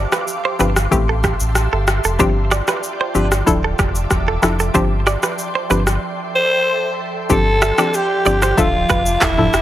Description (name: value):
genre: afrobeats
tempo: 94 BPM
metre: 4/4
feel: straight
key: unclear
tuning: A4 = 440 Hz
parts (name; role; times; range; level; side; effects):
- hollow square pluck; accompaniment; 0.0-9.6 s; E3 to E5; -19 LUFS; left 3 dB; chorus
- ethereal airy pad; sustained chords; 0.0-9.6 s; F3 to D6; -25 LUFS; right 1 dB; ensemble chorus, built-in reverb
- direct-recorded clean electric guitar; riff; 0.0-9.4 s; G4 to E5; -23 LUFS; right 6 dB; digital delay
- sub bass with octave; bass; 0.0-9.6 s; D1 to A1; -20 LUFS; equal; none
- afro-pop drum kit; drums; 0.1-9.6 s; handclaps, kick drum, rim click, shaker, toms; -19 LUFS; equal; none
- breathy alto saxophone; melody; 6.4-9.6 s; E4 to C5; -17 LUFS; equal; digital delay
room: light reverb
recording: none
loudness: -14 LUFS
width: side -13 dB against mid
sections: 0.0-7.3 A section; 7.3-9.6 B section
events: drums muted 6.0-7.3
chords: 0.0 G7sus4; 0.9 Am7; 2.2 G7sus4; 3.5 Dmadd9; 4.7 G7sus4; 6.0 Am7; 7.3 G7sus4; 8.6 Dmadd9